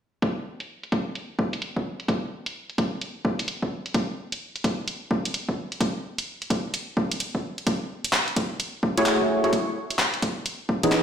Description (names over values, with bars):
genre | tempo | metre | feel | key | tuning
UK garage, two-step garage | 129 BPM | 4/4 | swing 63% on 16ths | F# dorian | A4 = 440 Hz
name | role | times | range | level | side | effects
electronic kick drum | drums | 0.2-10.8 s | none | -25 LUFS | equal | high-pass filter on kick, small room ambience, high-pass filter on room
garage drum kit | drums | 0.2-11.0 s | handclaps, hi-hat | -28 LUFS | equal | overdrive, low-pass filter on hats, small room ambience, low-pass filter on snare
percussive organ stab | stabs | 9.0-11.0 s | E3 to C#5 | -21 LUFS | equal | ensemble chorus, ping-pong delay
room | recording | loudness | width
moderate digital room reverb, RT60 1.0 s | played on a big sound system in a bare room, stone room reverb | -24 LUFS | side -8 dB against mid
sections
0.2-11.0 A section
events
none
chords
0.2 N.C.; 7.7 F#m9; 9.5 C#m9